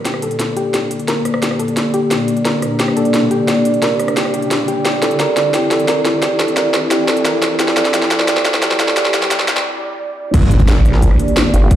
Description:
dark technical drum and bass; 175 BPM; 4/4; straight; G dorian; A4 = 440 Hz
dark analog pad; sustained chords; 0.0-11.8 s; Bb3 to D5; -17 LUFS; right 1 dB; chorus, phaser, sidechain pumping
riser and impact; sound effects; 0.0-11.7 s; -23 LUFS; equal
soft round pluck; arpeggios; 0.1-9.6 s; G4 to Bb4; -21 LUFS; left 2 dB; chorus, sidechain pumping, digital delay
drum and bass drum kit; drums; 0.1-11.8 s; crash cymbal, hi-hat, rim click, snare drum; -18 LUFS; equal; high-pass filter on hats, high-pass filter on snare, high-pass filter on cymbals
snarling distorted saw bass; bass; 10.3-10.7 s; G1; -14 LUFS; equal; distortion, tube saturation
electronic kick drum; drums; 10.3-11.8 s; -12 LUFS; equal
vowel-sweep wobble bass; bass; 10.7-11.8 s; G1 to Bb1; -12 LUFS; equal; chorus
wet plate reverb, RT60 1.4 s, digital ambience; played on a big sound system in a bare room, large studio reverb, high-pass filter; -13 LUFS; side -11 dB against mid
0.0-10.3 A section; 10.3-11.8 B section
build-up 0.0-10.3; drum fill 0.0-9.7; riser 0.0-9.7; filter sweep 0.0-10.3; break 9.7-10.3; drop 10.3-11.8; impact 10.3-11.7
0.0 Gm; 4.9 Cadd9; 10.3 Gm

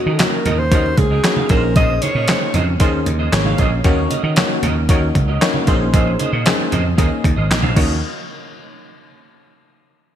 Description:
early-eighties boogie funk; 115 BPM; 4/4; straight; Eb dorian; A4 = 440 Hz
breathy alto saxophone; melody; 0.0-2.5 s; Gb4 to Eb5; -21 LUFS; equal; ping-pong delay
semi-hollow electric guitar; riff; 0.0-7.9 s; Db4 to F5; -24 LUFS; right 4 dB; ensemble chorus
vintage slap bass; bass; 0.1-8.0 s; Ab1 to Eb3; -18 LUFS; equal
FM electric piano; accompaniment; 0.2-8.0 s; Bb3 to Eb5; -23 LUFS; left 4 dB; chorus
crisp 8-bit digital drum machine; drums; 0.2-7.9 s; crash cymbal, handclaps, hi-hat, kick drum, snare drum; -18 LUFS; equal; overdrive
congas; percussion; 0.2-8.0 s; -26 LUFS; right 2 dB
moderate lush hall reverb, RT60 2.8 s; bright 1980s-style digital production; -14 LUFS; side -10 dB against mid
0.0-8.0 A section; 8.0-10.1 B section
0.0 Ebm7; 1.5 Bbm11; 3.8 Ebm7; 5.7 Bbm11; 7.8 Ebm7; 8.0 N.C.

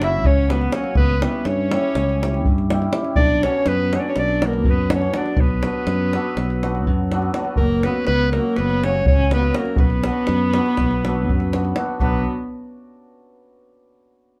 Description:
balkan folk, Balkan wedding band; 244 BPM (eighths); 9/8; straight; B harmonic minor; A4 = 440 Hz
clear clarinet; melody; 0.0-12.2 s; A#4 to E5; -26 LUFS; equal
dark viola; second line; 0.0-12.3 s; A#3 to E4; -27 LUFS; equal
hammered dulcimer; accompaniment; 0.0-12.3 s; F#3 to G4; -30 LUFS; equal
modern bright fingered electric bass; bass; 0.0-12.3 s; F#1 to G2; -24 LUFS; equal
davul; percussion; 0.0-12.2 s; -24 LUFS; equal
wet small room reverb, RT60 0.5 s; heard from further back in the room; -19 LUFS; mono
0.0-12.0 A section; 12.0-14.2 B section
0.0 F#; 1.0 C#dim; 3.2 Bm; 7.6 F#; 9.8 Bm

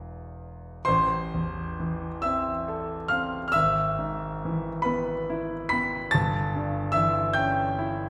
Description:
classical, romantic nocturne for solo piano; 39-49 BPM (dotted quarters); 6/8; rubato; A minor; A4 = 440 Hz
warm concert grand piano; solo; 0.0-8.1 s; E1 to B6; -27 LUFS; equal
wet scoring stage reverb, RT60 1.7 s; heard from further back in the room; -27 LUFS; mono
0.9-8.1 A section
0.0 E; 0.9 Am; 3.5 E/G#; 6.1 A7/G

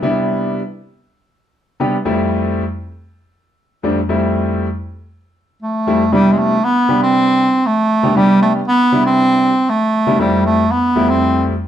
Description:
funk; 118 BPM; 4/4; straight; C major; A4 = 439 Hz
warm concert grand piano; accompaniment; 0.0-11.5 s; F2 to B4; -17 LUFS; left 1 dB
bright bass clarinet; melody; 5.6-11.5 s; G3 to C4; -12 LUFS; right 1 dB
moderate studio reverb, RT60 0.8 s; band playing live in one room; -12 LUFS; side -10 dB against mid
0.0-6.1 A section; 6.1-11.7 B section
0.0 Cmaj9; 2.1 Fmaj9; 6.1 Cmaj9; 10.2 Fmaj9

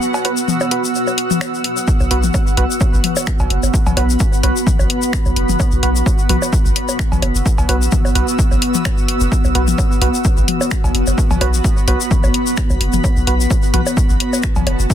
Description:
minimal techno; 129 BPM; 4/4; swing 55% on 16ths; A4 = 440 Hz
tube shaker; percussion; 0.0-14.9 s; -26 LUFS; left 8 dB
granular cloud pad; texture; 0.0-14.9 s; B3 to E6; -20 LUFS; equal; built-in reverb, sidechain pumping
electronic cowbell, bongos and toms; percussion; 0.1-14.8 s; -23 LUFS; left 5 dB; tape echo
percussive organ stab; stabs; 0.2-13.8 s; B3 to B4; -24 LUFS; right 5 dB; lush chorus, tape echo
house drum kit; drums; 0.2-14.8 s; finger snaps, hi-hat; -20 LUFS; left 2 dB; soft clipping on snare
electronic kick drum; drums; 1.9-14.9 s; -17 LUFS; equal
punchy sub bass; bass; 2.0-14.9 s; F#1 to B1; -17 LUFS; equal; sidechain pumping
little or no reverb; dense, heavily limited modern master; -13 LUFS; side -10 dB against mid
0.0-14.9 A section
break 0.0-1.9
0.0 B5

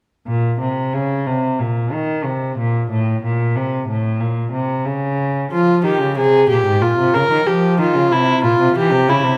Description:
classical, baroque-style fugue for string quartet; 92 BPM; 4/4; straight; Bb minor; A4 = 440 Hz
rich cello; bass; 0.3-9.4 s; Ab2 to F3; -20 LUFS; equal
warm viola; accompaniment; 5.5-9.4 s; E4 to Bb4; -17 LUFS; equal
wet recital hall reverb, RT60 1.3 s; -17 LUFS; mono
0.3-9.4 A section
0.3 Bbm; 1.6 Bbsus24; 2.9 Am; 4.2 Bbm; 5.5 Fm; 6.8 Gm7b5/Bb; 8.1 C

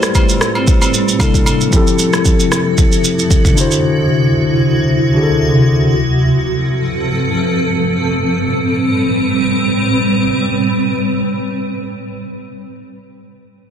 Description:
amapiano; 114 BPM; 4/4; swing 55% on 16ths; A minor; A4 = 445 Hz
mellow tine electric piano; accompaniment; 0.0-6.0 s; C3 to C5; -15 LUFS; left 3 dB; medium stereo tremolo
granular cloud pad; sustained chords; 0.0-12.4 s; D2 to B4; -15 LUFS; right 1 dB; built-in reverb
deep house drum kit; drums; 0.0-3.8 s; kick drum, rim click, shaker; -13 LUFS; equal; soft clipping on snare
agogo bells; percussion; 0.2-1.6 s; -22 LUFS; equal
light reverb, digital ambience; dense, heavily limited modern master; -12 LUFS; side -8 dB against mid
0.0-8.0 A section; 8.0-12.3 B section
0.0 Am9; 1.2 C13; 1.7 Fmaj7; 3.6 D9; 5.9 G9sus4; 8.0 Am9

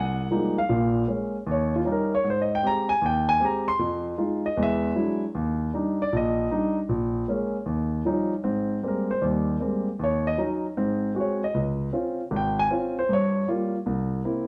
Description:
solo jazz; 155 BPM; 4/4; swing 65% on 8ths; Eb major, Ab major from 8.4 s; A4 = 441 Hz
dark grand piano; solo; 0.0-14.5 s; Ab1 to C6; -26 LUFS; equal
moderate stone room reverb, RT60 1.1 s; band playing live in one room; -25 LUFS; mono
0.0-8.4 A section; 8.4-14.5 A section
grand piano solo 0.0-8.4, 8.4-14.5
0.0 Fm11; 0.7 Bbm7; 1.5 Eb7; 2.2 Abmaj7; 3.8 Fm7; 4.6 E9; 5.3 Ebmaj7; 6.9 Bbm7; 7.7 Eb9; 8.4 Abmaj9; 10.0 Ebm7; 10.8 Ab7; 11.5 Dbmaj7; 13.1 Gm7b5; 13.9 C7

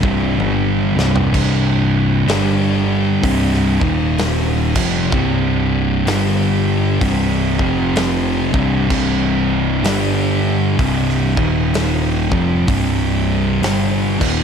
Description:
stoner and doom metal; 64 BPM; 4/4; swing 61% on 8ths; C minor; A4 = 440 Hz
tonewheel organ; sustained chords; 0.0-14.4 s; C3 to G4; -29 LUFS; equal; slow rotary speaker, overdrive
thick fuzz guitar; riff; 0.0-14.4 s; C2 to G3; -19 LUFS; left 10 dB; distortion
thick fuzz guitar; riff; 0.0-14.4 s; C2 to G3; -19 LUFS; right 9 dB; distortion
overdriven picked electric bass; bass; 0.0-14.4 s; C1 to G1; -21 LUFS; equal; tube saturation
big rock drum kit; drums; 0.0-14.4 s; crash cymbal, hi-hat, kick drum, snare drum, toms; -22 LUFS; equal
light reverb; -14 LUFS; side -7 dB against mid
0.0-14.4 A section
drum fill 0.4-1.3
0.0 C5; 2.3 G5; 3.2 C5; 3.7 Eb5; 4.6 C5; 6.1 G5; 7.0 C5; 7.5 F5; 8.4 C5; 9.8 G5; 10.8 C5; 11.3 Eb5; 12.2 C5

